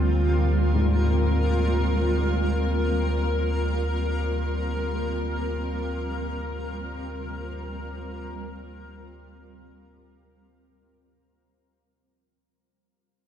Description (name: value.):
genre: dark ambient drone.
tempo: free time.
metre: none.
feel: none.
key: unclear.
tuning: A4 = 444 Hz.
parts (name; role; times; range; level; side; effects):
granular cloud pad; sustained chords; 0.0-12.3 s; G3 to Bb4; -28 LUFS; equal; built-in reverb, shimmer reverb.
dark baby grand piano; arpeggios; 0.0-12.3 s; Ab2 to Bb2; -33 LUFS; left 3 dB; ping-pong delay.
deep rumbling drone; drone; 0.0-12.4 s; D2; -26 LUFS; equal; built-in reverb, wide subtle chorus.
bronze singing bowl; texture; 0.0-12.3 s; F4; -38 LUFS; right 3 dB; none.
room: wet cathedral reverb, RT60 5.8 s.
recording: none.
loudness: -23 LUFS.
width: side -9 dB against mid.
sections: 0.0-12.3 A section.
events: fade-out 2.2-12.3.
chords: 0.0 Bb13/D.